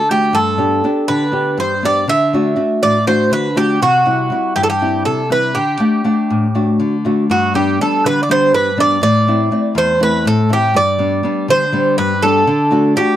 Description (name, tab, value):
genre	greek folk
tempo	242 BPM (eighths)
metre	7/8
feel	straight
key	G major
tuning	A4 = 437 Hz
part	Greek bouzouki	melody	0.0-13.2 s	F#4 to E5	-15 LUFS	right 2 dB	none
part	nylon-string guitar	accompaniment	0.0-13.2 s	E2 to F#5	-16 LUFS	left 2 dB	none
room	light reverb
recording	dry, close 1970s-style studio recording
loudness	-12 LUFS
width	side -12 dB against mid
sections	0.0-7.3 A section; 7.3-13.2 B section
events	none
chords	0.3 G; 2.1 D; 3.8 C; 5.6 D; 7.3 G; 9.0 Am; 10.7 G; 12.5 D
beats	0.08 | 0.33 0.58 0.83 1.08 1.33 1.57 1.82 | 2.07 2.32 2.57 2.82 3.07 3.32 3.56 | 3.81 4.06 4.31 4.56 4.81 5.06 5.30 | 5.55 5.80 6.05 6.30 6.54 6.79 7.04 | 7.29 7.54 7.78 8.03 8.28 8.53 8.77 | 9.02 9.27 9.51 9.76 10.01 10.25 10.50 | 10.75 10.99 11.24 11.49 11.73 11.98 12.22 | 12.47 12.72 12.96